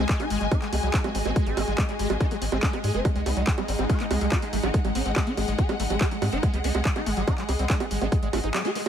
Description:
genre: psychedelic trance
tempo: 142 BPM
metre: 4/4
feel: straight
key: unclear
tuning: A4 = 441 Hz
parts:
  - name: swarming rave lead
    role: melody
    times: 0.0-8.9 s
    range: G#3 to G#4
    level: -31 LUFS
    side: equal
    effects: chorus, phaser, sidechain pumping, ping-pong delay
  - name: evolving wavetable pad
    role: sustained chords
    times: 0.0-8.9 s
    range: G#3 to G#4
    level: -34 LUFS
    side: right 2 dB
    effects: phaser, built-in reverb, sidechain pumping
  - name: overdriven acid bass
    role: riff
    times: 0.0-8.9 s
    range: F#3 to D#4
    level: -34 LUFS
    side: moving between left 7 dB and right 7 dB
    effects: distortion, auto-pan, sidechain pumping, ping-pong delay
  - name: round analog bass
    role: bass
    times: 0.0-8.5 s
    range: F#1 to G#2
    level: -28 LUFS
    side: equal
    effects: none
  - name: warm symphonic string section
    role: texture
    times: 0.0-8.9 s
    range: G#4 to G#5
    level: -34 LUFS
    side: left 3 dB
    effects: sidechain pumping
  - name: electronic kick drum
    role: drums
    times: 0.1-8.2 s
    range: none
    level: -24 LUFS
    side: equal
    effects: none
  - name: techno drum kit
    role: drums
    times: 0.1-8.9 s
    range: bongos, handclaps, hi-hat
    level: -30 LUFS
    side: right 4 dB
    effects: overdrive
room: little or no reverb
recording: none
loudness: -22 LUFS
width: side -9 dB against mid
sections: 0.0-8.9 A section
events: band accent 8.5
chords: 0.0 G#5

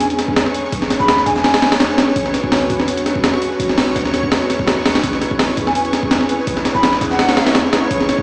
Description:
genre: drum and bass, jungle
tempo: 167 BPM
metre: 4/4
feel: swing 54% on 16ths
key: B dorian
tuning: A4 = 440 Hz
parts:
  - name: concert flute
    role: melody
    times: 0.0-1.9, 5.7-7.6 s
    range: F#5 to B5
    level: -20 LUFS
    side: equal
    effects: vintage 12-bit sampler grit, dub echo
  - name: airy breathy pad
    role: sustained chords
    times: 0.0-8.2 s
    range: C#4 to B4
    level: -20 LUFS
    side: equal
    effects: chorus
  - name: soft dub sub bass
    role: bass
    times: 0.0-8.2 s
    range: G#1 to E2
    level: -30 LUFS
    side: equal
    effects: none
  - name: breakbeat sampler-style drum kit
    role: drums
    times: 0.0-8.2 s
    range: hi-hat, kick drum, snare drum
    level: -16 LUFS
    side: equal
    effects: studio reverb
  - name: crunchy breakbeat drum kit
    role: drums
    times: 0.0-8.2 s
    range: hi-hat, shaker, snare drum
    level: -31 LUFS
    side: equal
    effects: none
  - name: backwards swelling texture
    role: texture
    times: 0.2-8.2 s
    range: C#5 to C#6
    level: -25 LUFS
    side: equal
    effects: built-in reverb
room: moderate digital room reverb, RT60 1.2 s, small room ambience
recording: played on a big sound system in a bare room, large studio reverb, vinyl crackle, small speaker sound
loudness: -13 LUFS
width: side -27 dB against mid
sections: 0.0-8.2 A section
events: none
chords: 0.0 Bm69; 5.0 C#m7/B

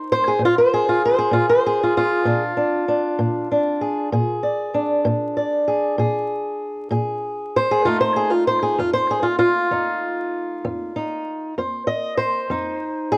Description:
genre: acoustic country blues, solo or duo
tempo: 64 BPM (dotted quarters)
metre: 12/8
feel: straight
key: unclear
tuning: A4 = 441 Hz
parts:
  - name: fingerpicked swing-style acoustic guitar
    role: solo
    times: 0.0-13.2 s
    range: F2 to Eb5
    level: -18 LUFS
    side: equal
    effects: cassette tape
room: light reverb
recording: home recording on cassette, vinyl crackle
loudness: -18 LUFS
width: side -28 dB against mid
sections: 0.0-13.2 A section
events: none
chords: 0.4 Bb7; 7.8 F7

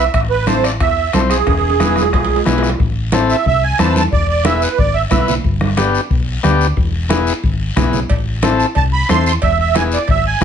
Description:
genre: latin, cumbia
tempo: 181 BPM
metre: 4/4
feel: straight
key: A harmonic minor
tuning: A4 = 440 Hz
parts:
  - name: musette accordion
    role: melody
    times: 0.0-5.3, 8.6-10.4 s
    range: G#4 to C6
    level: -16 LUFS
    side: right 7 dB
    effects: none
  - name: overdriven combo organ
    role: accompaniment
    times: 0.0-10.4 s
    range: B3 to C5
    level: -18 LUFS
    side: left 5 dB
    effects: none
  - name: hollow-body short-scale fingered electric bass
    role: bass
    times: 0.0-10.4 s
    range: E1 to E2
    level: -18 LUFS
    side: equal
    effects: none
  - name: bombo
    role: percussion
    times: 0.1-10.4 s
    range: none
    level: -20 LUFS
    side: left 2 dB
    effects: none
  - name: guiro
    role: percussion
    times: 0.1-10.4 s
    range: none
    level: -28 LUFS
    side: left 5 dB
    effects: none
  - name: timbales and cowbell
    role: percussion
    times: 0.1-2.8, 8.1-10.2 s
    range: none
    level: -24 LUFS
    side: right 4 dB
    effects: none
  - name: congas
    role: percussion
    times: 0.5-10.4 s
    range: none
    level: -20 LUFS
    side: right 4 dB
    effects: none
room: light reverb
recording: nothing above 11.0 kHz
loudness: -12 LUFS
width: side -8 dB against mid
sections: 0.0-2.8 A section; 2.8-10.4 B section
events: drum fill 1.5-2.8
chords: 0.1 Am; 1.5 E; 2.8 Am; 4.1 E; 5.4 G; 6.8 E; 8.1 Am; 9.4 E

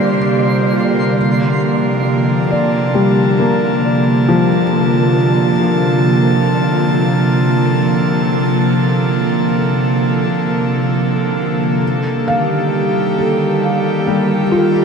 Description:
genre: ambient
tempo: 67 BPM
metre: 3/4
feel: straight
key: Bb major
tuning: A4 = 440 Hz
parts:
  - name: warm velvety synth lead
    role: melody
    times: 0.0-0.7 s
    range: D5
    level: -27 LUFS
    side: left 1 dB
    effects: chorus, shimmer reverb, diffuse ambient delay
  - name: airy breathy pad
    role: sustained chords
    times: 0.0-14.8 s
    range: C3 to A5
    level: -14 LUFS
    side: right 1 dB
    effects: chorus
  - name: felt-muted upright piano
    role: arpeggios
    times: 0.0-14.8 s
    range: F3 to F5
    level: -19 LUFS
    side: left 2 dB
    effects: shimmer reverb, diffuse ambient delay
  - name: bowed-like drone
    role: drone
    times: 0.0-14.8 s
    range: Bb3 to C5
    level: -25 LUFS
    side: left 1 dB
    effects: built-in reverb
  - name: twinkling granular texture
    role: texture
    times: 0.0-1.2 s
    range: C6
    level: -27 LUFS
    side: right 3 dB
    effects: built-in reverb, shimmer reverb
room: wet cathedral reverb, RT60 6.0 s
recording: none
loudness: -12 LUFS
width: side -6 dB against mid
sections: 0.0-1.2 A section; 1.2-14.8 B section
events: fade-in on synth drone 1.2-14.8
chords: 0.0 Ebmaj7 (rootless); 11.8 Ebmaj7

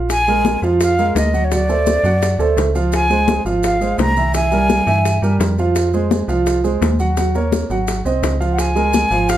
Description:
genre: Afro-Cuban jazz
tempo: 170 BPM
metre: 4/4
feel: straight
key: unclear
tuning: A4 = 441 Hz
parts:
  - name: warm upright piano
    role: accompaniment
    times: 0.0-9.4 s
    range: E3 to Gb5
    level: -18 LUFS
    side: right 3 dB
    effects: none
  - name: metallic FM bass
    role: bass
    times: 0.0-9.4 s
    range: Ab1 to G2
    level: -20 LUFS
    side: equal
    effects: none
  - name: breathy concert flute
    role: melody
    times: 0.1-5.4, 8.5-9.4 s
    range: Db5 to Bb5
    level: -18 LUFS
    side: equal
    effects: none
  - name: bongos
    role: percussion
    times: 0.1-9.4 s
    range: none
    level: -24 LUFS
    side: left 7 dB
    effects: none
  - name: congas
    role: percussion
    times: 0.1-9.4 s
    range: none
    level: -23 LUFS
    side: left 3 dB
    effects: none
  - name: maracas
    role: percussion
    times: 0.1-9.4 s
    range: none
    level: -33 LUFS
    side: right 4 dB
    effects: none
room: moderate club reverb, RT60 0.5 s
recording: none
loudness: -14 LUFS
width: side -12 dB against mid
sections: 0.1-9.4 A section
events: none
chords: 0.1 Bb5; 1.5 D7; 2.9 Dbmaj7; 4.3 C7b13; 5.8 Fm7; 7.2 Ebm7; 7.9 Ab6; 8.6 Db6

